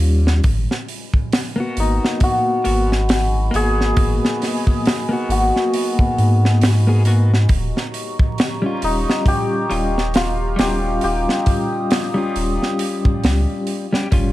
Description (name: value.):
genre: trip hop.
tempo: 68 BPM.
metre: 4/4.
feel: swing 58% on 16ths.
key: G# dorian.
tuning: A4 = 442 Hz.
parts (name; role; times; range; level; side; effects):
clean electric guitar; accompaniment; 0.0-14.3 s; G3 to G#4; -23 LUFS; left 2 dB; harmonic tremolo, tape echo.
warm sub bass; bass; 0.0-14.3 s; D#1 to G#2; -17 LUFS; equal; tube saturation.
crisp fusion drum kit; drums; 0.0-14.3 s; hi-hat, kick drum, snare drum; -20 LUFS; equal; none.
dark analog pad; sustained chords; 1.7-14.3 s; F#4 to D#6; -29 LUFS; right 1 dB; chorus.
santur; melody; 1.8-14.2 s; D#4 to G#4; -23 LUFS; left 2 dB; tape echo.
room: light reverb.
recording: dark, warm production, vinyl crackle.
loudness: -16 LUFS.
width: side -16 dB against mid.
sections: 0.0-14.3 A section.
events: none.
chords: 0.4 G#m7; 7.5 D#7.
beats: | 0.44 1.32 2.20 3.09 | 3.97 4.85 5.73 6.62 | 7.50 8.38 9.26 10.14 | 11.03 11.91 12.79 13.67.